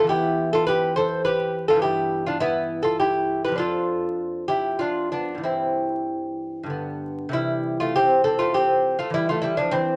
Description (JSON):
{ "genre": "classical, baroque-style dance for lute", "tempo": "93-105 BPM", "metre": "3/4", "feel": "rubato", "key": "C major", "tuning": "A4 = 439 Hz", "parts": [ { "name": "lute", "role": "solo", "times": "0.0-10.0 s", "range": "E2 to C5", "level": "-23 LUFS", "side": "equal", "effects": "none" } ], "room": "light reverb", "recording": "vinyl crackle", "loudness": "-23 LUFS", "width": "mono", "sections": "0.0-7.3 A section; 7.3-10.0 A section", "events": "none", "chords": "0.1 Em; 1.8 Em/G; 5.4 C/G; 6.7 G; 7.3 C; 9.1 Emadd11" }